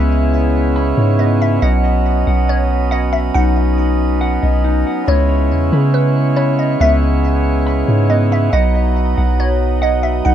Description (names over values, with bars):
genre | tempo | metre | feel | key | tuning
hip hop | 139 BPM | 4/4 | half-time | C# minor | A4 = 439 Hz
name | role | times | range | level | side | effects
glassy wavetable pluck | melody | 0.0-10.3 s | B4 to F#5 | -21 LUFS | equal | chorus, low-pass filter, digital delay
pipe organ, cornet | sustained chords | 0.0-10.3 s | C#3 to E4 | -19 LUFS | right 3 dB | none
mellow electric guitar | arpeggios | 0.0-10.3 s | B3 to B5 | -23 LUFS | left 4 dB | low-pass filter, digital delay
soft 808-style bass | bass | 0.0-10.3 s | B1 to C#3 | -15 LUFS | equal | none
drifting glass-harmonics texture | texture | 0.0-10.3 s | B3 to D#5 | -27 LUFS | equal | chorus, built-in reverb
room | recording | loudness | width
light reverb | rough home demo mix | -12 LUFS | side -10 dB against mid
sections
0.0-10.3 A section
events
none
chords
0.0 C#m7; 1.6 B; 5.1 C#m7; 8.5 B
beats
0.33 0.76 1.19 | 1.62 2.06 2.49 2.92 | 3.35 3.78 4.21 4.64 | 5.08 5.51 5.94 6.37 | 6.80 7.24 7.67 8.10 | 8.53 8.96 9.39 9.82 | 10.26